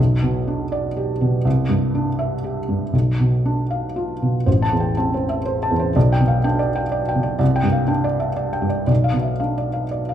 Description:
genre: neoclassical minimalist piano.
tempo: 121 BPM.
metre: 3/4.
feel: rubato.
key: A minor.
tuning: A4 = 442 Hz.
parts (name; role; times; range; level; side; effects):
felt-muted upright piano; solo; 0.0-10.1 s; A1 to A5; -17 LUFS; equal; none.
room: wet large studio reverb, RT60 0.9 s.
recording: band playing live in one room.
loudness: -18 LUFS.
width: side -10 dB against mid.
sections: 0.0-4.5 A section; 4.5-10.1 A section.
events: none.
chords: 0.0 G/B; 1.5 Cadd9; 2.9 Bdim; 4.5 Am; 6.0 G/B; 7.4 Cadd9; 8.9 Bdim.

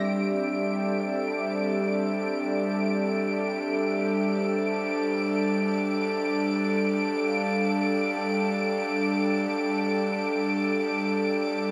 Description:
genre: ambient.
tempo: free time.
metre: none.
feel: none.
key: unclear.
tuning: A4 = 440 Hz.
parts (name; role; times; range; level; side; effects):
airy breathy pad; sustained chords; 0.0-11.7 s; G3 to E5; -27 LUFS; equal; chorus.
vibraphone with medium mallets; arpeggios; 0.0-11.7 s; G3 to G5; -41 LUFS; equal; delay.
warm studio violin section; texture; 0.0-11.7 s; D7; -35 LUFS; equal; none.
room: wet concert hall reverb, RT60 2.2 s.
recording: cassette tape.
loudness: -26 LUFS.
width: mono.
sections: 0.1-11.7 A section.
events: fade-in on vibraphone 0.1-11.7.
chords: 0.1 G5.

